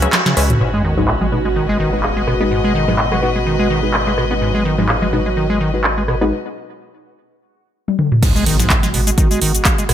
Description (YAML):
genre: acid house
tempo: 126 BPM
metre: 4/4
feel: swing 55% on 16ths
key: G# minor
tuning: A4 = 440 Hz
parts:
  - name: deep acid bass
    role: riff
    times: 0.0-9.9 s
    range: G#2 to B3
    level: -20 LUFS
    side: equal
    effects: overdrive, sidechain pumping, ping-pong delay
  - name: filtered dub chord stab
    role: stabs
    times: 0.0-6.3 s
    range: G#3 to E5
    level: -23 LUFS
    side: left 2 dB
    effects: chorus, ping-pong delay
  - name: saturated sub bass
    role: bass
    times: 0.0-9.9 s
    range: G#1 to C#2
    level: -22 LUFS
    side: equal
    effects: sidechain pumping
  - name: booming analog drum machine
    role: drums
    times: 0.0-9.9 s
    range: cabasa, crash cymbal, handclaps, hi-hat, rim click, snare drum, toms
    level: -18 LUFS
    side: equal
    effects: low-pass filter on hats, low-pass filter on snare, low-pass filter on toms, low-pass filter on cymbals, low-pass filter on perc, low-pass filter on room
  - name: rich chamber string section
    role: texture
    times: 0.0-6.3 s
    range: C#4 to E5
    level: -23 LUFS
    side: left 3 dB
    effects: sidechain pumping
  - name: warm analog pad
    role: sustained chords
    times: 0.6-9.9 s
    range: B2 to F#4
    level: -24 LUFS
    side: right 3 dB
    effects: chorus, phaser, sidechain pumping
  - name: sub drop and impact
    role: sound effects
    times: 0.6-2.5, 8.2-9.9 s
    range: none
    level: -23 LUFS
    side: equal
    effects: none
  - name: trumpet with cup mute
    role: melody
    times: 3.1-3.3 s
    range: F#4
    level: -28 LUFS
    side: equal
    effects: vintage 12-bit sampler grit, dub echo
  - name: electronic kick drum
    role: drums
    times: 8.2-9.8 s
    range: none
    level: -15 LUFS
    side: equal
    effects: overdrive
room: light reverb, digital ambience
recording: none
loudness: -14 LUFS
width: side -10 dB against mid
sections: 0.6-8.2 A section; 8.2-9.9 B section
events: kick drops out 0.1-0.6; drum fill 0.1-0.6, 7.9-8.2; band accent 0.1; impact 0.6-2.5, 8.2-9.9; filter sweep on synth stab 0.6-8.2; break 6.3-8.2; drop 8.2-9.9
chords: 0.0 C#m7; 0.6 G#m7